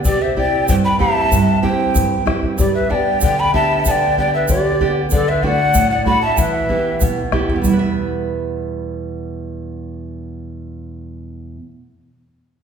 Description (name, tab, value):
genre	andean folk, Andean ensemble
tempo	95 BPM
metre	2/4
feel	straight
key	E minor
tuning	A4 = 439 Hz
part	nylon-string guitar	accompaniment	0.0-11.7 s	E2 to E5	-20 LUFS	right 3 dB	none
part	tube shaker	percussion	0.0-7.9 s	none	-27 LUFS	right 5 dB	none
part	breathy mellow quena	melody	0.1-7.0 s	D5 to B5	-19 LUFS	equal	none
part	polished pan flute	second line	0.1-7.0 s	G4 to G5	-20 LUFS	left 4 dB	none
part	bombo	percussion	0.1-7.9 s	none	-21 LUFS	left 2 dB	none
room	wet recital hall reverb, RT60 1.4 s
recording	recorded in a church or concert hall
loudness	-14 LUFS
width	side -7 dB against mid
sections	0.0-7.6 A section; 7.6-10.2 B section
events	none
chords	0.1 C; 2.6 G; 5.1 D; 6.4 Em